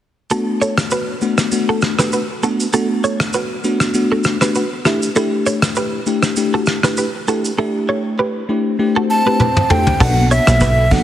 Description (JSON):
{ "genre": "afrobeats", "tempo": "99 BPM", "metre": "4/4", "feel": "swing 55% on 16ths", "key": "unclear", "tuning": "A4 = 440 Hz", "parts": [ { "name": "bell-like FM electric piano", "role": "accompaniment", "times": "0.3-11.0 s", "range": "A3 to A4", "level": "-18 LUFS", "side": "left 2 dB", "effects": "chorus, phaser" }, { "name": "direct-recorded clean electric guitar", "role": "riff", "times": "0.3-10.9 s", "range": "E4 to C#5", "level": "-21 LUFS", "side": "right 2 dB", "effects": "analog chorus, tape echo" }, { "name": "soft brush drum kit", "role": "drums", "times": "0.3-11.0 s", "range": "crash cymbal, hi-hat, kick drum, rim click, shaker, toms", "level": "-19 LUFS", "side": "equal", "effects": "vintage 12-bit sampler grit" }, { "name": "swell", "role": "sound effects", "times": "8.6-10.0 s", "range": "none", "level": "-27 LUFS", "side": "left 1 dB", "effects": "none" }, { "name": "breathy mellow silver concert flute", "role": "melody", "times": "9.1-11.0 s", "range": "E5 to A5", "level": "-16 LUFS", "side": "right 1 dB", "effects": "none" }, { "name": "plucky analog bass", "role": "bass", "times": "10.0-11.0 s", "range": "B1", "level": "-14 LUFS", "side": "equal", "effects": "none" }, { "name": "congas", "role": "percussion", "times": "10.2-11.0 s", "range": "none", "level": "-22 LUFS", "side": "right 3 dB", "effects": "none" } ], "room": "light reverb", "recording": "heavily compressed radio sound", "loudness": "-14 LUFS", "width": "side -11 dB against mid", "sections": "0.3-10.0 A section; 10.0-11.0 B section", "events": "swell 8.6-10.0; drum fill 9.4-10.0", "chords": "0.3 Bm7; 4.9 A7sus4; 10.0 Bm7", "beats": "| 0.31 0.91 1.52 2.12 | 2.73 3.34 3.94 4.55 | 5.16 5.76 6.37 6.97 | 7.58 8.19 8.79 9.40 | 10.00 10.61" }